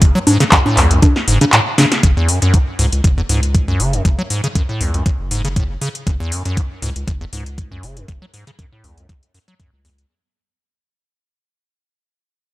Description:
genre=acid house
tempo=119 BPM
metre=4/4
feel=swing 54% on 16ths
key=F# minor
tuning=A4 = 439 Hz
part: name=liquid acid bass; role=riff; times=0.0-9.9 s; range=F#1 to F#3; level=-18 LUFS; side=equal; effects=chorus, sidechain pumping, tape echo
part: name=round analog bass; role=bass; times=0.0-10.1 s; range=F#1 to C#2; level=-20 LUFS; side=equal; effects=tube saturation, sidechain pumping
part: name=electro analog drum machine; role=drums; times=0.0-10.1 s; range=congas, handclaps, hi-hat, snare drum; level=-16 LUFS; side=equal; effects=none
part: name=electronic kick drum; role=drums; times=0.0-9.7 s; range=none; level=-14 LUFS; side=equal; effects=none
room=light reverb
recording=dry, gritty hardware recording, transformer saturation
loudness=-13 LUFS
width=side -17 dB against mid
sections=0.0-2.0 A section; 2.0-10.1 B section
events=drop 0.0-2.0; kick drops out 1.5-2.0; fade-out 2.0-10.1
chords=0.0 F#5

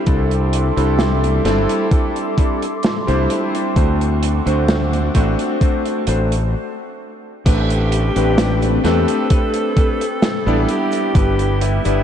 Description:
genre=vaporwave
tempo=65 BPM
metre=4/4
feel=straight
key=unclear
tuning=A4 = 441 Hz
part: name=clear electric grand piano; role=accompaniment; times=0.0-12.0 s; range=G3 to D5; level=-19 LUFS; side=equal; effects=wide subtle chorus, ping-pong delay
part: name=warbly tape-like pad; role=sustained chords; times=0.0-12.0 s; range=C4 to D6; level=-27 LUFS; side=left 2 dB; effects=chorus, built-in reverb, phaser
part: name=growling fingered electric bass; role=bass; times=0.1-12.0 s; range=G1 to E2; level=-18 LUFS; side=equal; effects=overdrive
part: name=electronic kick drum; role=drums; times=0.1-11.3 s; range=none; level=-16 LUFS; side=equal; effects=overdrive, vintage 12-bit sampler grit
part: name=modern studio drum kit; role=drums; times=0.1-12.0 s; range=cabasa, crash cymbal, hi-hat, snare drum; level=-23 LUFS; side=right 1 dB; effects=vintage 12-bit sampler grit
part: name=bright alto saxophone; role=melody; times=7.5-12.0 s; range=E4 to A4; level=-23 LUFS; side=equal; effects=tape echo
room=moderate huge ambient reverb, RT60 4.1 s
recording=dreamy mix soaked in reverb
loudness=-15 LUFS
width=side -9 dB against mid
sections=0.0-7.5 A section; 7.5-12.0 B section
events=stop 6.5-7.5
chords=0.0 C69; 3.8 D7; 7.5 Am11; 10.7 G6

